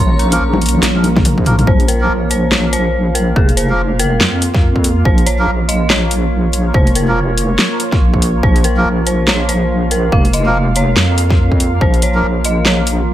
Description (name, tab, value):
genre	deep dubstep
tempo	142 BPM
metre	4/4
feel	swing 60% on 16ths, half-time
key	Bb minor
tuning	A4 = 440 Hz
part	dark detuned synth bell	melody	0.0-13.1 s	Ab4 to C6	-21 LUFS	equal	chorus, dub echo
part	deep dark ambient pad	sustained chords	0.0-13.1 s	Bb3 to Bb5	-20 LUFS	right 1 dB	chorus, built-in reverb
part	deep soft wobble bass	bass	0.0-13.1 s	F1 to F2	-15 LUFS	equal	chorus
part	backwards swelling texture	texture	0.0-1.7 s	Db4 to Db5	-26 LUFS	equal	built-in reverb
part	dubstep drum kit	drums	0.2-13.0 s	hi-hat, snare drum, toms	-16 LUFS	equal	none
part	melodica	stabs	0.3-12.3 s	F3 to Bb4	-22 LUFS	right 1 dB	dub echo
part	congas	percussion	0.3-1.7 s	none	-21 LUFS	left 3 dB	none
part	electronic kick drum	drums	1.2-11.9 s	none	-13 LUFS	equal	none
room	light reverb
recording	none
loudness	-11 LUFS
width	side -12 dB against mid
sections	0.0-1.7 A section; 1.7-13.1 A section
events	drop 0.0-1.7, 1.7-13.1; drum fill 0.8-1.7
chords	0.0 Bb5